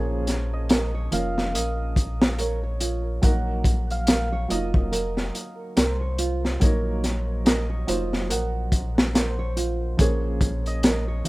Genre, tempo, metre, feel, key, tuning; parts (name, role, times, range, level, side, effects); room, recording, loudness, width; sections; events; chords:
trip hop; 71 BPM; 4/4; swing 59% on 16ths; A4 = 440 Hz
cimbalom; melody; 0.0-11.3 s; C5 to Gb5; -34 LUFS; equal; plate reverb, tape echo
felt-muted upright piano; accompaniment; 0.0-11.3 s; F3 to C5; -32 LUFS; right 1 dB; tremolo, plate reverb
nylon-string guitar; arpeggios; 0.0-11.3 s; F4 to Db5; -31 LUFS; right 4 dB; plate reverb, tape echo
soft dub sub bass; bass; 0.0-11.3 s; F1 to C2; -27 LUFS; equal; tube saturation
crunchy breakbeat drum kit; drums; 0.3-11.3 s; hi-hat, kick drum, snare drum; -22 LUFS; equal
light reverb; rough home demo mix; -21 LUFS; side -20 dB against mid
0.0-11.3 A section
0.0 Bbm7; 3.2 Ebm; 10.0 Bbm7